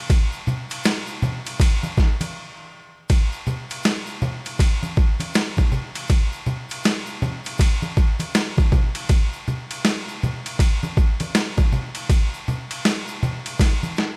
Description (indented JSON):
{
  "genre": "hip hop",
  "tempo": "80 BPM",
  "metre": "4/4",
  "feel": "swing 62% on 16ths",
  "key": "none",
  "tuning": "none",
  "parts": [
    { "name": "boom bap sampler-style drum kit", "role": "drums", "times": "0.1-14.2 s", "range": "hi-hat, kick drum, ride cymbal, snare drum", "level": "-22 LUFS", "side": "equal", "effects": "overdrive" },
    { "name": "tube shaker and congas", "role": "percussion", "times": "0.1-14.2 s", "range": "none", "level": "-30 LUFS", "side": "equal", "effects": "none" }
  ],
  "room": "little or no reverb",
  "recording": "none",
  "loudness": "-22 LUFS",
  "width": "mono",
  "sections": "0.0-3.1 A section; 3.1-14.2 B section",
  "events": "break 2.3-3.1; drum fill 13.6-14.2",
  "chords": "none",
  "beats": "| 0.10 0.85 1.60 2.35 | 3.10 3.85 4.60 5.35 | 6.10 6.85 7.60 8.35 | 9.10 9.85 10.60 11.35 | 12.10 12.85 13.60"
}